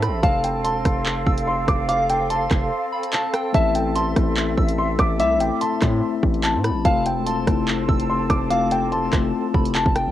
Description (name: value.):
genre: hip hop, drill.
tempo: 145 BPM.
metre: 4/4.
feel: half-time.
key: unclear.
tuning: A4 = 440 Hz.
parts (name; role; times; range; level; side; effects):
dark upright piano; melody; 0.0-10.1 s; E5 to D6; -24 LUFS; left 1 dB; cassette tape.
soft synth bell; second line; 0.0-10.1 s; G5 to E6; -30 LUFS; right 1 dB; chorus, phaser, cassette tape, tape echo.
breathy large flute ensemble; sustained chords; 0.0-10.1 s; C4 to A5; -28 LUFS; right 2 dB; cassette tape.
distorted 808-style bass; bass; 0.0-10.1 s; E1 to A2; -25 LUFS; right 1 dB; distortion.
drill drum kit; drums; 0.0-10.1 s; handclaps, hi-hat, kick drum, rim click; -22 LUFS; right 1 dB; cassette tape.
mellow tine electric piano; accompaniment; 3.5-10.1 s; A3 to F4; -25 LUFS; left 9 dB; medium stereo tremolo, cassette tape.
room: little or no reverb.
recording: home recording on cassette.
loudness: -18 LUFS.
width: side -12 dB against mid.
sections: 0.0-10.1 A section.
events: break 2.7-3.5.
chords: 0.2 F; 3.5 Am; 6.9 F.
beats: | 0.23 0.65 1.06 1.47 | 1.89 2.30 2.71 3.13 | 3.54 3.96 4.37 4.78 | 5.20 5.61 6.03 6.44 | 6.85 7.27 7.68 8.09 | 8.51 8.92 9.34 9.75.